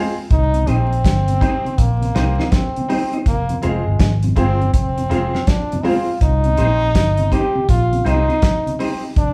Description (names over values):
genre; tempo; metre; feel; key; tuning
roots reggae; 81 BPM; 4/4; swing 65% on 16ths; C minor; A4 = 443 Hz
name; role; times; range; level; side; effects
bright trombone; melody; 0.0-9.3 s; Ab3 to G4; -23 LUFS; equal; none
tonewheel organ; accompaniment; 0.0-8.9 s; F2 to F4; -26 LUFS; equal; chorus vibrato, slow rotary speaker
bright upright piano; stabs; 0.0-9.0 s; C4 to C5; -30 LUFS; equal; none
vintage muted fingered electric bass; bass; 0.3-9.3 s; F1 to C2; -21 LUFS; equal; none
damped 70s drum kit; drums; 0.3-9.3 s; hi-hat, kick drum, snare drum; -21 LUFS; equal; none
room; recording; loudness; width
wet large studio reverb, RT60 1.0 s; band playing live in one room, vinyl crackle; -17 LUFS; mono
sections
0.0-9.3 A section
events
none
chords
0.3 Cm; 3.3 Fm; 6.2 Cm